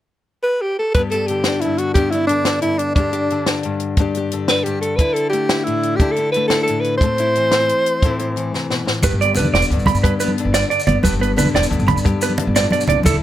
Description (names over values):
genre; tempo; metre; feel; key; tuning
highlife guitar band; 119 BPM (dotted quarters); 12/8; straight; G major; A4 = 441 Hz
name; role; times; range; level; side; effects
breathy alto saxophone; melody; 0.4-8.6 s; D4 to C5; -18 LUFS; equal; none
compact cocktail drum kit; drums; 0.9-13.1 s; hi-hat, kick drum, snare drum; -19 LUFS; equal; none
nylon-string guitar; accompaniment; 1.0-13.2 s; G2 to G4; -22 LUFS; left 4 dB; none
electric guitar through a small old amp; arpeggios; 9.0-13.2 s; A4 to B5; -19 LUFS; right 7 dB; none
upright bass; bass; 9.0-13.2 s; E1 to G2; -20 LUFS; equal; none
congas; percussion; 9.0-13.1 s; none; -21 LUFS; right 1 dB; none
maracas; percussion; 9.0-13.1 s; none; -28 LUFS; left 2 dB; none
room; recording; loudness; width
light reverb; none; -15 LUFS; side -12 dB against mid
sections
0.9-9.0 A section; 9.0-13.2 B section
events
drum fill 8.5-9.0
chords
0.0 N.C.; 0.9 G; 5.0 Dsus2; 7.0 Am; 9.0 G